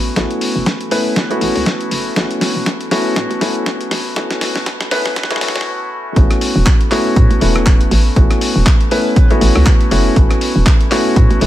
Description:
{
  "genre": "deep house",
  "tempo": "120 BPM",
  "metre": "4/4",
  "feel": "swing 57% on 16ths",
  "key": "A major",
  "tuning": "A4 = 439 Hz",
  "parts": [
    { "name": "felt-muted upright piano", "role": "stabs", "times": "0.0-11.5 s", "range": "A3 to B4", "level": "-17 LUFS", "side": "left 1 dB", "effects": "sidechain pumping, low-pass filter, digital delay" },
    { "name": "hollow knocking FM bass", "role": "bass", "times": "0.0-11.5 s", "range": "E1 to A2", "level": "-15 LUFS", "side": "equal", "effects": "sidechain pumping" },
    { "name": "dusty soul sampler-style drum kit", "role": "drums", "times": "0.2-11.5 s", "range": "handclaps, hi-hat, rim click, snare drum", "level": "-20 LUFS", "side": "equal", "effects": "studio reverb" },
    { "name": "electronic kick drum", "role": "drums", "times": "0.2-11.3 s", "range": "none", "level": "-12 LUFS", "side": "equal", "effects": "high-pass filter on kick, studio reverb, high-pass filter on room" }
  ],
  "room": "little or no reverb",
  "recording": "high-pass filter",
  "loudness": "-12 LUFS",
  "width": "side -14 dB against mid",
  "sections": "0.0-6.2 A section; 6.2-11.5 B section",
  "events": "build-up 0.0-6.2; drum fill 0.0-5.7; filter sweep on felt piano 0.0-6.2; filter sweep 0.0-6.2; break 5.7-6.2; drop 6.2-11.5",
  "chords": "0.0 A69",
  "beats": "| 0.16 0.66 1.16 1.66 | 2.16 2.66 3.16 3.66 | 4.16 4.66 5.16 5.66 | 6.16 6.66 7.16 7.66 | 8.16 8.66 9.16 9.66 | 10.16 10.66 11.16"
}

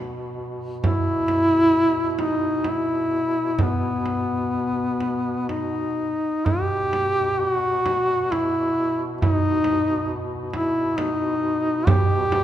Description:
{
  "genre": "caucasian folk, Caucasian lament",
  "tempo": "60-69 BPM",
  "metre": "3/4",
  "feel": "rubato",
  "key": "B major",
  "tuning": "A4 = 439 Hz",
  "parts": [
    { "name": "mellow duduk", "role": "drone", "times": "0.0-12.4 s", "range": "B2", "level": "-32 LUFS", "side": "right 1 dB", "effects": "none" },
    { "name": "frame drum", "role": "percussion", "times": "0.8-12.4 s", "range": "none", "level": "-25 LUFS", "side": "right 2 dB", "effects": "none" },
    { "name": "warm duduk", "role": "melody", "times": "0.9-12.4 s", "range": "B3 to G4", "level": "-21 LUFS", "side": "equal", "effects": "none" }
  ],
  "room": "wet church reverb, RT60 4.2 s",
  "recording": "minimal, uncompressed stereo recording",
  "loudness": "-20 LUFS",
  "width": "side -11 dB against mid",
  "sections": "0.0-6.5 A section; 6.5-12.4 B section",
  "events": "none",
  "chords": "none",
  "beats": "| 0.84 1.74 2.65 | 3.59 4.53 5.50 | 6.47 7.41 8.33 | 9.22 10.10 10.99 | 11.88"
}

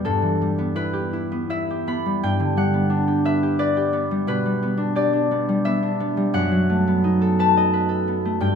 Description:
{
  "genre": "classical, solo harp piece",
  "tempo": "87 BPM",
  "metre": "3/4",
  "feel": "rubato",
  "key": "unclear",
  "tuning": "A4 = 440 Hz",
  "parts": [
    { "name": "concert harp", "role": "solo", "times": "0.0-8.6 s", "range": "E2 to B5", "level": "-19 LUFS", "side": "equal", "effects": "none" }
  ],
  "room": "wet stone room reverb, RT60 1.3 s",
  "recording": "none",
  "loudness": "-19 LUFS",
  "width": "side -6 dB against mid",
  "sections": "0.0-8.6 A section",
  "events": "none",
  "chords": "0.1 Em/G; 2.2 G; 4.3 G/B; 6.4 B7/F#",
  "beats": "| 0.08 0.76 1.50 | 2.23 2.92 3.62 | 4.31 4.99 5.67 | 6.36 7.04 7.73 | 8.43"
}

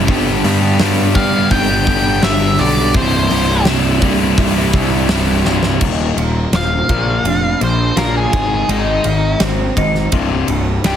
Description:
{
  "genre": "quiet-loud alternative rock",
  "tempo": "84 BPM",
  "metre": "4/4",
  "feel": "straight",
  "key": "unclear",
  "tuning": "A4 = 440 Hz",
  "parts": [
    { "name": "cranked stack guitar", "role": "riff", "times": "0.0-11.0 s", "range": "C2 to G4", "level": "-19 LUFS", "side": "left 10 dB", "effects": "overdrive" },
    { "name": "overdriven electric guitar", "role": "riff", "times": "0.0-5.8 s", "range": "C2 to G3", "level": "-22 LUFS", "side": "right 1 dB", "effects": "none" },
    { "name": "thick fuzz guitar", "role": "riff", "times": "0.0-5.8 s", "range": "C2 to G4", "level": "-19 LUFS", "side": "right 9 dB", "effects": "distortion" },
    { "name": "fuzz picked electric bass", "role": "bass", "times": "0.0-11.0 s", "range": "C1 to G2", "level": "-18 LUFS", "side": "equal", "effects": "overdrive" },
    { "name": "big rock drum kit", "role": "drums", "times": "0.1-11.0 s", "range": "crash cymbal, hi-hat, kick drum, ride cymbal, snare drum", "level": "-19 LUFS", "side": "equal", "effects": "none" },
    { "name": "octave-fuzz lead guitar", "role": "melody", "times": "1.2-11.0 s", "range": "Eb4 to G5", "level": "-18 LUFS", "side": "equal", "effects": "distortion, slapback echo" },
    { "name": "electric guitar through a small old amp", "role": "arpeggios", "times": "5.8-11.0 s", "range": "C2 to F4", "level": "-22 LUFS", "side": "right 3 dB", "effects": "analog chorus" }
  ],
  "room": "light reverb",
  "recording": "heavily compressed radio sound",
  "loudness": "-12 LUFS",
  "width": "side -9 dB against mid",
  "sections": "0.0-5.8 A section; 5.8-11.0 B section",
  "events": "drum fill 5.5-5.8; lead electric guitar solo 5.8-11.0",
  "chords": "0.1 G; 2.9 C; 5.8 Ebsus2; 6.9 Bb; 8.3 Ab; 10.1 C5",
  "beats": "| 0.08 0.80 1.51 2.23 | 2.95 3.66 4.38 5.10 | 5.82 6.54 7.25 7.97 | 8.69 9.41 10.13 10.85"
}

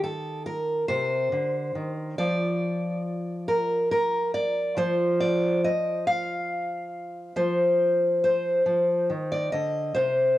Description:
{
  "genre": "folk, solo fingerstyle acoustic guitar",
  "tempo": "46 BPM (dotted quarters)",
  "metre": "6/8",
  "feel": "straight",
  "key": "unclear",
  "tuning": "A4 = 440 Hz",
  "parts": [
    { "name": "fingerpicked steel-string acoustic guitar", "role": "solo", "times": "0.0-10.4 s", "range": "C3 to F5", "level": "-23 LUFS", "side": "equal", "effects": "cassette tape" }
  ],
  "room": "moderate spring reverb, RT60 2.0 s",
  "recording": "home recording on cassette",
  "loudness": "-23 LUFS",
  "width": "side -15 dB against mid",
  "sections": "0.0-10.4 A section",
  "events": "none",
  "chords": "0.0 Cm/Eb; 2.2 N.C.; 4.8 F5",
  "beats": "0.88 | 2.18 3.47 | 4.77 6.07 | 7.36 8.66 | 9.95"
}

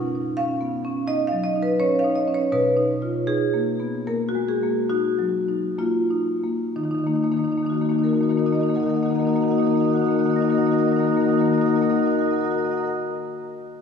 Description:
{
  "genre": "classical, contemporary piece for solo marimba",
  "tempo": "59-87 BPM",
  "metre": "5/4",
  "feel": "rubato",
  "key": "Eb minor",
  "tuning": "A4 = 438 Hz",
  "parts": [
    { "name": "marimba with medium hard mallets", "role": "solo", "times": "0.0-12.9 s", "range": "B2 to Bb6", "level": "-20 LUFS", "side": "left 1 dB", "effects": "none" }
  ],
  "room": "wet church reverb, RT60 3.1 s",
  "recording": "recorded in a church or concert hall, studio reverb",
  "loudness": "-20 LUFS",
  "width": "side -6 dB against mid",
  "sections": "0.0-6.8 A section; 6.8-11.5 B section",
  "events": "slowing down 0.0-6.8",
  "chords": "0.0 Badd9; 2.5 Bmaj7; 6.8 Ebm",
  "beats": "0.36 1.06 1.77 | 2.51 3.27 4.07 4.90 5.79 | 6.77 7.70 8.64 9.58 10.54"
}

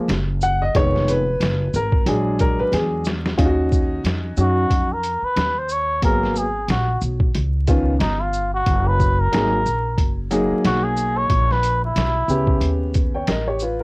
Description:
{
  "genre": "hip hop, jazz-hop",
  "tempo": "91 BPM",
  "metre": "4/4",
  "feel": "swing 58% on 16ths",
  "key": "Eb minor",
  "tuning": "A4 = 440 Hz",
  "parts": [
    { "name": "warm upright piano", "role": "accompaniment", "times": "0.0-13.8 s", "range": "Db3 to G5", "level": "-21 LUFS", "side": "equal", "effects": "cassette tape, plate reverb" },
    { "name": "upright bass", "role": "bass", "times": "0.1-13.8 s", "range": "F1 to Gb2", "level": "-22 LUFS", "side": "equal", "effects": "none" },
    { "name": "lo-fi sampler-style drum kit", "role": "drums", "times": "0.1-13.8 s", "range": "hi-hat, kick drum, shaker, snare drum", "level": "-21 LUFS", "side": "equal", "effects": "overdrive, cassette tape" },
    { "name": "trumpet with cup mute", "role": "melody", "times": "4.4-12.8 s", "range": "Eb4 to Db5", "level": "-21 LUFS", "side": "equal", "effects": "cassette tape, plate reverb" }
  ],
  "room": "light reverb",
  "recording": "home recording on cassette, vinyl crackle",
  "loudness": "-17 LUFS",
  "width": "side -27 dB against mid",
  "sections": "0.0-3.4 A section; 3.4-13.8 A section",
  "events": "upright piano solo 0.0-3.4; drum fill 2.7-3.4; muted trumpet solo 3.4-13.8",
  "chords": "0.0 N.C.; 0.8 Fm7b5; 2.1 Bb7b13; 3.4 Ebm9; 6.0 Abm9; 7.3 Db9; 8.7 Gb69; 11.3 Bbdim; 12.6 Eb7b13",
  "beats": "0.10 | 0.75 1.41 2.07 2.73 | 3.39 4.05 4.71 5.37 | 6.03 6.69 7.35 8.01 | 8.67 9.33 9.98 10.64 | 11.30 11.96 12.62 13.28"
}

